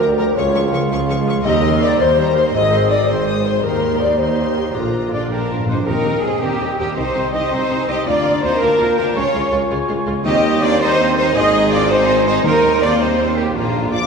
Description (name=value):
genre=cinematic, heroic adventure film score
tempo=109 BPM (dotted quarters)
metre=6/8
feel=straight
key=Eb major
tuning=A4 = 440 Hz
part: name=bright symphonic violin section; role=melody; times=0.0-14.1 s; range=Bb3 to Eb6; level=-26 LUFS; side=left 3 dB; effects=none
part: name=mellow cor anglais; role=second line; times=0.0-14.1 s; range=C4 to Ab5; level=-30 LUFS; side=right 2 dB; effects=none
part: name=mellow hollow concert flute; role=second line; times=0.0-14.1 s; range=F4 to D6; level=-27 LUFS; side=left 1 dB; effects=none
part: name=warm symphonic violin section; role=second line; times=0.0-14.1 s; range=F4 to D6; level=-26 LUFS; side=left 2 dB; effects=none
part: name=clear symphonic viola section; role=accompaniment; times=0.0-14.1 s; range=D3 to C5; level=-26 LUFS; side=right 1 dB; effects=none
part: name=mellow French horn section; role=sustained chords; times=0.0-14.1 s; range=F3 to Eb5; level=-22 LUFS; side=left 3 dB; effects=none
part: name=concert harp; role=arpeggios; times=0.0-14.1 s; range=Ab2 to Db5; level=-29 LUFS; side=left 7 dB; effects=none
part: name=rich symphonic cello section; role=bass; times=0.0-14.1 s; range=Db2 to Eb5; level=-20 LUFS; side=right 1 dB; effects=none
part: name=rich symphonic double bass section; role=bass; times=0.0-14.1 s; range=Ab1 to Eb2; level=-24 LUFS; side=right 3 dB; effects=none
part: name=warm tuba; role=bass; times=0.0-14.1 s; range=Ab1 to Eb2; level=-23 LUFS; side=right 2 dB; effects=none
part: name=timpani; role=percussion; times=1.5-5.8, 10.3-14.1 s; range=Bb2 to Eb3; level=-26 LUFS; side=right 1 dB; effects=none
part: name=clear trumpet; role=stabs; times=5.1-14.0 s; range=F4 to Eb5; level=-25 LUFS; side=right 1 dB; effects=none
part: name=mellow clarinet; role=second line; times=5.9-14.1 s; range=C4 to F4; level=-29 LUFS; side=left 1 dB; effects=none
room=wet church reverb, RT60 2.6 s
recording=recorded in a church or concert hall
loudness=-14 LUFS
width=side -5 dB against mid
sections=0.0-5.9 A section; 5.9-14.1 A section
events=timpani fill 4.8-5.9, 13.6-14.1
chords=0.4 Db; 1.5 Eb6; 2.6 Ab; 3.6 Eb6; 4.8 Bb; 5.9 Eb6; 7.0 Cm; 8.1 Bb/D; 9.2 Db; 10.3 Eb6; 11.3 Ab; 12.4 Eb6; 13.6 Bb